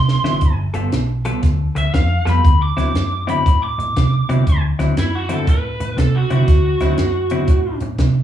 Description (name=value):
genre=electric blues shuffle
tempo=119 BPM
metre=4/4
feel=swing 65% on 8ths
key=D mixolydian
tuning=A4 = 439 Hz
part: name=lead guitar through a small cranked amp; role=melody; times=0.0-7.8 s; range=E4 to D6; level=-21 LUFS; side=equal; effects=overdrive, slapback echo
part: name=vintage muted fingered electric bass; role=bass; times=0.0-8.2 s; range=G1 to C3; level=-18 LUFS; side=right 1 dB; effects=none
part: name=compact cocktail drum kit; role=drums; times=0.1-8.1 s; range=hi-hat, kick drum, snare drum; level=-18 LUFS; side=equal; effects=none
part: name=clean electric guitar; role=riff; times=0.2-8.0 s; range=D3 to A4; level=-24 LUFS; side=left 3 dB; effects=spring reverb, slapback echo
room=light reverb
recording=live gig heard through the venue's PA, club reverb, small room ambience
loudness=-15 LUFS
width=side -11 dB against mid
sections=0.0-8.2 A section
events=drum fill 0.0-0.4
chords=0.4 G9; 2.5 D9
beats=| 0.43 0.93 1.44 1.94 | 2.45 2.96 3.46 3.96 | 4.47 4.97 5.48 5.98 | 6.48 6.99 7.49 7.99